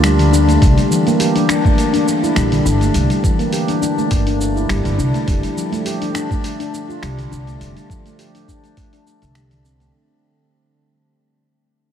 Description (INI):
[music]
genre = organic downtempo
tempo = 103 BPM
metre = 4/4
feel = swing 54% on 16ths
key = unclear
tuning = A4 = 440 Hz
[part]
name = handpan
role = arpeggios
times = 0.0-9.9 s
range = D3 to G4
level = -16 LUFS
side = left 1 dB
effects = ping-pong delay
[part]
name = upright bass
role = bass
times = 0.0-9.9 s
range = F1 to D2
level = -18 LUFS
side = equal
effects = sidechain pumping
[part]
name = dusty soul sampler-style drum kit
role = drums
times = 0.0-9.9 s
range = finger snaps, hi-hat, shaker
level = -25 LUFS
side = right 1 dB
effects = none
[part]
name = electronic kick drum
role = drums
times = 0.6-8.9 s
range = none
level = -16 LUFS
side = equal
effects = none
[sound]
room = moderate huge ambient reverb, RT60 7.4 s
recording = dreamy mix soaked in reverb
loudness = -14 LUFS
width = side -9 dB against mid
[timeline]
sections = 0.0-9.9 A section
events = fade-out 0.6-9.9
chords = 0.0 G5; 0.6 Csus2 (rootless); 5.3 F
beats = 0.03 | 0.62 1.20 1.78 2.36 | 2.95 3.53 4.11 4.69 | 5.28 5.86 6.44 7.02 | 7.61 8.19 8.77 9.35